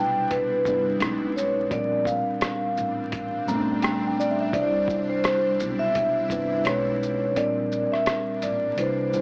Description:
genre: lo-fi hip hop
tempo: 85 BPM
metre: 4/4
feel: swing 60% on 16ths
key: unclear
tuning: A4 = 442 Hz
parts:
  - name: vibraphone with soft mallets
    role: melody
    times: 0.0-9.2 s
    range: B4 to G5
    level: -27 LUFS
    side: equal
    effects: low-pass filter
  - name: mellow tine electric piano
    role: accompaniment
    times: 0.0-9.2 s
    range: Bb2 to Bb5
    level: -30 LUFS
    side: equal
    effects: cassette tape, low-pass filter
  - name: granular cloud pad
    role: sustained chords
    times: 0.0-9.2 s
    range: G3 to E4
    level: -38 LUFS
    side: equal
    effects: built-in reverb, low-pass filter
  - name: upright bass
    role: bass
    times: 0.0-9.2 s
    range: G1 to E2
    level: -38 LUFS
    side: equal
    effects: none
  - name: lo-fi sampler-style drum kit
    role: drums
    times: 0.3-9.2 s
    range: hi-hat, kick drum, rim click, shaker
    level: -31 LUFS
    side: equal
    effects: none
room: little or no reverb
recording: dry, gritty hardware recording, transformer saturation, vinyl crackle, small speaker sound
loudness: -25 LUFS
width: mono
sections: 0.0-9.2 A section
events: kick muted 7.4-9.2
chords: 0.0 Cmaj9; 1.0 B69; 1.7 Bb69; 4.5 Cmaj9; 6.7 B69; 7.4 Bb69

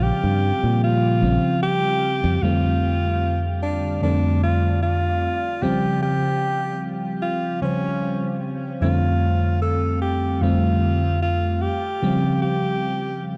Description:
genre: vaporwave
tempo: 75 BPM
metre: 4/4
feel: straight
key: F major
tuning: A4 = 440 Hz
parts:
  - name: bright alto saxophone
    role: melody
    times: 0.0-13.3 s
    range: Db4 to A4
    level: -27 LUFS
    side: equal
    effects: tape echo
  - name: FM electric piano with soft pad layer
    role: accompaniment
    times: 0.0-13.4 s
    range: F2 to C5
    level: -23 LUFS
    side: equal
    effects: analog chorus
  - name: fingered electric bass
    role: bass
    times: 0.0-2.4 s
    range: Bb1 to Bb2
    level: -22 LUFS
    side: equal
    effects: tube saturation
room: moderate huge ambient reverb, RT60 8.1 s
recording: dark, warm production, cassette tape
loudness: -21 LUFS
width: mono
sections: 0.0-2.4 A section; 2.4-13.4 B section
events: none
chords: 0.0 Bbm6; 2.4 F69; 5.2 Dbmaj7#11; 8.8 F69; 11.6 Dbmaj7#11

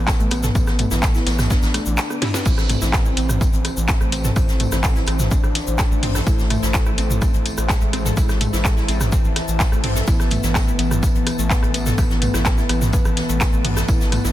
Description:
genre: melodic techno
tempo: 126 BPM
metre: 4/4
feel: straight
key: A harmonic minor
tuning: A4 = 439 Hz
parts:
  - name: gritty driven synth bass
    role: bass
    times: 0.0-14.3 s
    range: A1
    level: -23 LUFS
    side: equal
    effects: distortion, sidechain pumping
  - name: soft octave-layered synth lead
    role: melody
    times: 0.1-14.3 s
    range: E3 to D4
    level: -28 LUFS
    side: left 2 dB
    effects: chorus, sidechain pumping, ping-pong delay
  - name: electronic kick drum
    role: drums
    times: 0.1-14.0 s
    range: none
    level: -19 LUFS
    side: equal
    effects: none
  - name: jazz brush drum kit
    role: drums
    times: 0.1-14.3 s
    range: hi-hat, snare drum, tambourine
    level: -32 LUFS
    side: left 1 dB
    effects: high-pass filter on hats, soft clipping on snare, high-pass filter on snare, high-pass filter on perc, high-pass filter on room
  - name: techno drum kit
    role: drums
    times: 0.1-14.2 s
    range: crash cymbal, handclaps, hi-hat, rim click, snare drum, toms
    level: -24 LUFS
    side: equal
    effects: none
  - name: egg shaker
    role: percussion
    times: 0.1-14.3 s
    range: none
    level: -32 LUFS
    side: left 4 dB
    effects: none
  - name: wide unison pluck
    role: arpeggios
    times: 0.2-14.3 s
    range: A3 to B4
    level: -29 LUFS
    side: equal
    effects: sidechain pumping, ping-pong delay
  - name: deep dark ambient pad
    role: sustained chords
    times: 3.7-14.3 s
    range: E3 to A5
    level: -30 LUFS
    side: equal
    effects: chorus, built-in reverb, sidechain pumping
room: small room reverb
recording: dense, heavily limited modern master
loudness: -16 LUFS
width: side -14 dB against mid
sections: 0.0-14.3 A section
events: drum fill 2.2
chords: 0.0 Esus4/A (rootless); 2.5 Am; 10.1 Esus4/A

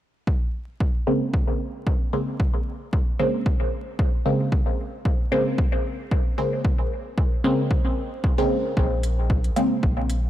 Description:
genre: dub techno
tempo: 113 BPM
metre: 4/4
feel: swing 55% on 16ths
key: Bb minor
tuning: A4 = 440 Hz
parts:
  - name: electronic kick drum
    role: drums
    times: 0.3-9.9 s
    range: none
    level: -22 LUFS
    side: equal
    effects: studio reverb
  - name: filtered dub chord stab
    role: stabs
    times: 1.1-10.3 s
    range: Db3 to C4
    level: -24 LUFS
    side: equal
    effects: phaser, sidechain pumping, dub echo
  - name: warm sub bass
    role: bass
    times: 8.8-10.3 s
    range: Bb1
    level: -24 LUFS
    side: equal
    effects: transformer saturation, sidechain pumping
  - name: electronic hi-hat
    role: drums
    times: 9.0-10.2 s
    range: none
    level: -36 LUFS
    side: right 1 dB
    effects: overdrive, studio reverb
room: little or no reverb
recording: dry, gritty hardware recording, transformer saturation, vinyl crackle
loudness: -21 LUFS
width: side -12 dB against mid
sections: 0.3-8.8 A section; 8.8-10.3 B section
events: filter sweep on synth stab 0.3-8.8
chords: 0.3 Bbm9

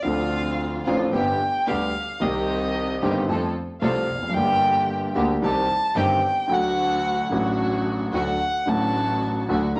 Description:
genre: tango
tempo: 110 BPM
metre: 4/4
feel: rubato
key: unclear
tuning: A4 = 440 Hz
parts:
  - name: warm violin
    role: second line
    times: 0.0-9.8 s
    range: Eb5 to Bb5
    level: -27 LUFS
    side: equal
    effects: none
  - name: warm concert grand piano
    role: accompaniment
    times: 0.0-9.8 s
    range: G1 to A4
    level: -26 LUFS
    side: equal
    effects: none
  - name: rich studio string section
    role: stabs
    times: 0.0-9.8 s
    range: A3 to A4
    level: -34 LUFS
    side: equal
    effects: none
  - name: clear double bass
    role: bass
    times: 0.0-9.8 s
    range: F1 to F2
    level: -34 LUFS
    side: equal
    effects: none
room: wet studio reverb, RT60 0.9 s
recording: none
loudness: -23 LUFS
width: mono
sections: 0.0-9.8 A section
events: violin solo 0.0-9.8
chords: 0.0 Dm7; 1.1 G; 2.2 Cm; 3.3 F; 4.3 Gm; 5.4 Cm; 6.5 D

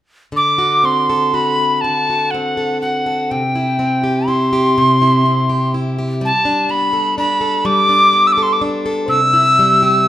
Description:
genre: celtic folk, Celtic slow air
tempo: 62 BPM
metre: 3/4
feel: rubato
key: D mixolydian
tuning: A4 = 440 Hz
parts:
  - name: picked plugged-in steel-string acoustic guitar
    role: accompaniment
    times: 0.3-10.1 s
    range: C3 to A4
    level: -18 LUFS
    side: equal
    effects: none
  - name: bright wooden whistle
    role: melody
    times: 0.4-10.1 s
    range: F#5 to E6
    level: -14 LUFS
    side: equal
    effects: none
room: moderate recital hall reverb, RT60 1.5 s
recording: minimal, uncompressed stereo recording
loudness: -12 LUFS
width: side -12 dB against mid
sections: 0.3-10.1 A section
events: none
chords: 0.3 D7; 3.3 C; 6.2 Gadd9

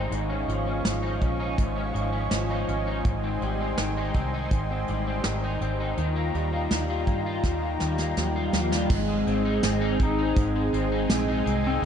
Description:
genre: dream pop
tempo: 82 BPM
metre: 4/4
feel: straight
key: Ab major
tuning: A4 = 440 Hz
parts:
  - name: warm analog pad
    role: sustained chords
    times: 0.0-11.9 s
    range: C4 to Db6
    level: -31 LUFS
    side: right 2 dB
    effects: chorus
  - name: electric guitar at the edge of break-up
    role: arpeggios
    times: 0.0-11.9 s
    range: Ab2 to F4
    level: -30 LUFS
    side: left 3 dB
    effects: ensemble chorus, ping-pong delay
  - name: vintage muted fingered electric bass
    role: bass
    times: 0.0-11.9 s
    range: Ab1 to G2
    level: -29 LUFS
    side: equal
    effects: none
  - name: soft brush drum kit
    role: drums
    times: 0.1-11.6 s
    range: crash cymbal, hi-hat, kick drum, snare drum, tambourine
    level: -27 LUFS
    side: right 1 dB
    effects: none
  - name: clean lap steel guitar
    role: melody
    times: 8.2-11.8 s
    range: G3 to Eb4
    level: -28 LUFS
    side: left 1 dB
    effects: ping-pong delay
room: moderate recital hall reverb, RT60 1.7 s, small room reverb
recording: nothing above 10.5 kHz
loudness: -24 LUFS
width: side -8 dB against mid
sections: 0.0-8.9 A section; 8.9-11.9 B section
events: drum fill 7.4-8.9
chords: 0.1 Dbadd9/Ab; 3.0 Abmaj7; 6.0 Ebadd9; 8.9 Ab

